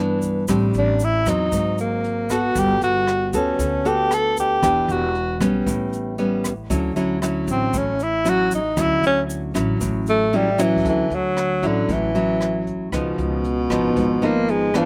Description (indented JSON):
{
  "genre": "bossa nova",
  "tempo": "116 BPM",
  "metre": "4/4",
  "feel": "straight",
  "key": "D major",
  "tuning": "A4 = 438 Hz",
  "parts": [
    { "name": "nylon-string guitar", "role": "accompaniment", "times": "0.0-14.9 s", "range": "G2 to A4", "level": "-24 LUFS", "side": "equal", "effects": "none" },
    { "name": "upright bass", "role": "bass", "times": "0.0-14.9 s", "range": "E1 to G2", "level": "-29 LUFS", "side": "equal", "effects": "none" },
    { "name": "jazz brush drum kit", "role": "drums", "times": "0.2-14.9 s", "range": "hi-hat, kick drum, rim click, toms", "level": "-35 LUFS", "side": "equal", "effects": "none" },
    { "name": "egg shaker", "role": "percussion", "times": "0.2-10.8 s", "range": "none", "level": "-38 LUFS", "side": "equal", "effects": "none" },
    { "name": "breathy tenor saxophone", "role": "melody", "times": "0.8-14.9 s", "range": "B2 to A4", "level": "-23 LUFS", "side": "equal", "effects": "none" }
  ],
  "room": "little or no reverb",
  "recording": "recorded outdoors, with no room sound",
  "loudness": "-21 LUFS",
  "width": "mono",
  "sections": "0.0-10.8 A section; 10.8-14.9 B section",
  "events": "tenor saxophone solo 0.0-10.8; drum fill 10.6",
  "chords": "0.5 Am7; 1.5 G#7; 2.6 Gmaj9; 4.6 Em7; 5.7 A9; 6.7 Dmaj9; 12.9 C#9"
}